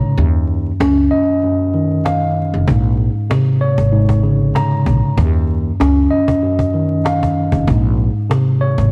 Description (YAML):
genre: hip hop, boom-bap hip-hop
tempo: 96 BPM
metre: 4/4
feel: swing 55% on 16ths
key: unclear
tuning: A4 = 444 Hz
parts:
  - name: mellow tine electric piano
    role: accompaniment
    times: 0.0-8.9 s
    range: Gb2 to Bb5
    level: -17 LUFS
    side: equal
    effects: cassette tape, high-pass filter, low-pass filter
  - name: upright bass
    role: bass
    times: 0.2-8.9 s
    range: F1 to Eb2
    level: -18 LUFS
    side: equal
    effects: tube saturation
  - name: cajon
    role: drums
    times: 0.2-8.9 s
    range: none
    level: -24 LUFS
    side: equal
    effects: cassette tape
room: light reverb, studio ambience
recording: home recording on cassette, vinyl crackle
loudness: -15 LUFS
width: mono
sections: 0.0-8.9 A section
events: break 0.0-2.7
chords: 0.2 Ebm9; 2.7 Bbm9; 5.2 Ebm9; 7.7 Bbm9